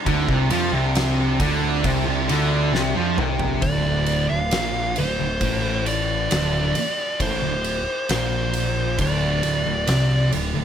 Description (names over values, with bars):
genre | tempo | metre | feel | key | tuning
stoner and doom metal | 67 BPM | 4/4 | straight | D minor | A4 = 440 Hz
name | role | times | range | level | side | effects
overtone-sweeping drone | sustained chords | 0.0-3.6 s | C3 to D4 | -34 LUFS | equal | none
thick fuzz guitar | riff | 0.1-10.6 s | D2 to F3 | -26 LUFS | left 6 dB | distortion
thick fuzz guitar | riff | 0.1-10.6 s | D2 to F3 | -26 LUFS | right 8 dB | distortion
tight distorted guitar | riff | 0.1-3.6 s | C3 to F3 | -25 LUFS | left 1 dB | distortion
growling picked electric bass | bass | 0.1-10.6 s | D1 to F2 | -27 LUFS | equal | overdrive
oversized low-tuned drum kit | drums | 0.1-10.5 s | kick drum, ride cymbal, snare drum, toms | -26 LUFS | right 1 dB | none
fuzz lead guitar | melody | 3.6-10.3 s | C5 to F5 | -25 LUFS | left 1 dB | distortion, tape echo
room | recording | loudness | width
small room reverb | none | -19 LUFS | side -9 dB against mid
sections
0.0-3.6 A section; 3.6-10.6 B section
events
drum fill 2.7-3.6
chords
0.0 C5; 3.6 D5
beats
| 0.07 0.96 1.85 2.74 | 3.63 4.52 5.42 6.31 | 7.20 8.10 8.99 9.88